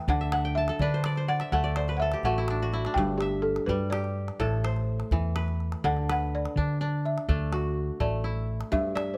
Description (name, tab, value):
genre	west african traditional, West African string and xylophone music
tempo	83 BPM (dotted quarters)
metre	12/8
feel	straight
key	unclear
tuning	A4 = 440 Hz
part	balafon	melody	0.0-9.2 s	G4 to G5	-32 LUFS	equal	none
part	kora	arpeggios	0.0-9.2 s	G2 to A5	-34 LUFS	equal	none
part	hollow-body short-scale fingered electric bass	bass	0.1-8.6 s	G1 to D3	-32 LUFS	equal	none
part	calabash	percussion	0.1-9.1 s	none	-35 LUFS	equal	none
room	light reverb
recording	close, detailed microphones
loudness	-28 LUFS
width	mono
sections	0.0-8.7 A section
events	balafon solo 0.0-8.7; kora fill 0.2-3.0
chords	0.1 D; 3.0 G5; 4.4 Am; 5.8 D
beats	| 0.08 0.80 1.52 2.24 | 2.96 3.68 4.40 5.12 | 5.84 6.56 7.28 8.00 | 8.72